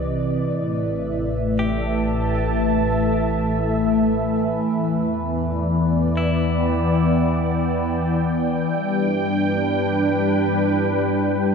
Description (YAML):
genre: ambient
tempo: 59 BPM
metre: 4/4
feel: straight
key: E minor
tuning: A4 = 440 Hz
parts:
  - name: warm analog pad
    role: sustained chords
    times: 0.0-11.5 s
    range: A2 to A5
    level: -20 LUFS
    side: left 1 dB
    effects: chorus
  - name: direct-recorded clean electric guitar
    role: arpeggios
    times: 0.0-9.2 s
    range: C4 to G4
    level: -35 LUFS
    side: left 1 dB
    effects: diffuse ambient delay
  - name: warm sub bass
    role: bass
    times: 0.0-11.5 s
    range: A1 to G2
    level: -28 LUFS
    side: equal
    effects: none
  - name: overtone-sweeping drone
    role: drone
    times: 0.0-11.5 s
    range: E3 to B4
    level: -27 LUFS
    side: right 1 dB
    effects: chorus, built-in reverb
room: wet cathedral reverb, RT60 6.0 s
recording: dark, warm production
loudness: -18 LUFS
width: side -6 dB against mid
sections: 0.0-11.5 A section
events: fade-in on clean electric guitar 0.0-11.5; fade-out on sub bass 0.0-11.5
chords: 0.0 Cmadd9; 0.6 A5; 4.6 Em7; 8.7 G